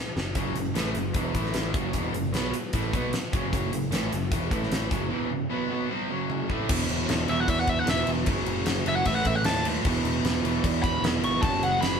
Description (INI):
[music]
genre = hard rock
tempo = 152 BPM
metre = 4/4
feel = straight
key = F# minor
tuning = A4 = 439 Hz
[part]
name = picked electric bass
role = bass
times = 0.2-12.0 s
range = E1 to E2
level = -32 LUFS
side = equal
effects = none
[part]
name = huge arena drum kit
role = drums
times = 0.2-11.9 s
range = crash cymbal, hi-hat, kick drum, snare drum, toms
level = -29 LUFS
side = left 1 dB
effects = none
[part]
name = overdriven electric guitar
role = riff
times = 0.3-12.0 s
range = E2 to B#3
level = -32 LUFS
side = left 7 dB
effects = none
[part]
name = overdriven semi-hollow guitar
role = riff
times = 0.3-12.0 s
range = E2 to B#3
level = -30 LUFS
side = right 6 dB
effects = none
[part]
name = biting lead guitar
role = melody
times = 7.3-12.0 s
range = E5 to C#6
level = -27 LUFS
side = equal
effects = overdrive
[sound]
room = moderate large studio reverb, RT60 0.9 s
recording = band playing live in one room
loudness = -24 LUFS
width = side -6 dB against mid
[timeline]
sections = 0.0-6.7 A section; 6.7-12.0 B section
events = drum fill 0.0-0.4, 6.3-6.7; lead electric guitar solo 6.7-12.0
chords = 0.0 F#m; 1.3 A5; 1.7 F#m; 4.5 A5; 4.9 F#m; 6.7 E5; 8.3 F#5; 9.1 A5; 9.8 E5; 11.4 F#5